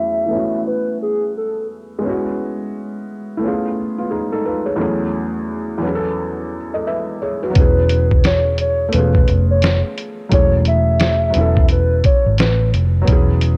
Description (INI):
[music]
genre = lo-fi hip hop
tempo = 87 BPM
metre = 4/4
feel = swing 61% on 16ths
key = unclear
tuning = A4 = 442 Hz
[part]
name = warbly nostalgic lead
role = melody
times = 0.0-1.7, 7.6-12.7 s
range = G#4 to E5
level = -22 LUFS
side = equal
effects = chorus, low-pass filter
[part]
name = felt-muted upright piano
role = accompaniment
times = 0.0-13.6 s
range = E2 to E5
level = -24 LUFS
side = equal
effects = low-pass filter, cassette tape
[part]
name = vintage muted fingered electric bass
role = bass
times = 7.6-13.6 s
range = E1 to A1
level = -18 LUFS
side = equal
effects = none
[part]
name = lo-fi sampler-style drum kit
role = drums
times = 7.6-13.6 s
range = hi-hat, kick drum, snare drum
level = -18 LUFS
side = equal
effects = cassette tape
[sound]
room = light reverb, digital ambience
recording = home recording on cassette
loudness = -17 LUFS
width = mono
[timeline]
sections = 0.0-7.6 A section; 7.6-13.6 B section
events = filter sweep 0.0-7.6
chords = 0.3 B7sus4/E; 2.0 E69; 3.4 C#7b13; 4.8 F#m9/E; 5.8 B7sus4/E; 7.6 E69; 8.9 C#7b13/E; 10.3 F#m9/E; 11.4 B7sus4/E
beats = 0.66 1.35 | 2.04 2.73 3.42 4.11 | 4.80 5.49 6.18 6.87 | 7.56 8.25 8.94 9.63 | 10.32 11.01 11.70 12.39 | 13.08